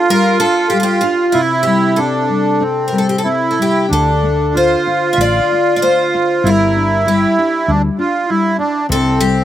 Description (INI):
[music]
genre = fado-style ballad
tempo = 95 BPM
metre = 4/4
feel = uneven beats, rubato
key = unclear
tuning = A4 = 440 Hz
[part]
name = picked twelve-string acoustic guitar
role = melody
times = 0.0-9.4 s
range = E4 to E5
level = -17 LUFS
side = left 3 dB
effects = slapback echo
[part]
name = accordion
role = second line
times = 0.0-9.4 s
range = C4 to F4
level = -15 LUFS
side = right 3 dB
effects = light tremolo tuning, slapback echo
[part]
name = nylon-string guitar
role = accompaniment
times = 0.0-9.4 s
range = C3 to F4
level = -19 LUFS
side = left 4 dB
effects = none
[part]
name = woody fretless electric bass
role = bass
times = 3.9-9.4 s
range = G1 to D2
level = -18 LUFS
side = equal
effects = none
[sound]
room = light reverb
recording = recorded outdoors, with no room sound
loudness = -12 LUFS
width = side -12 dB against mid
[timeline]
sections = 0.0-9.4 A section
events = none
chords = 0.0 G5; 1.3 C; 3.9 Dm; 6.5 Gm; 8.9 C5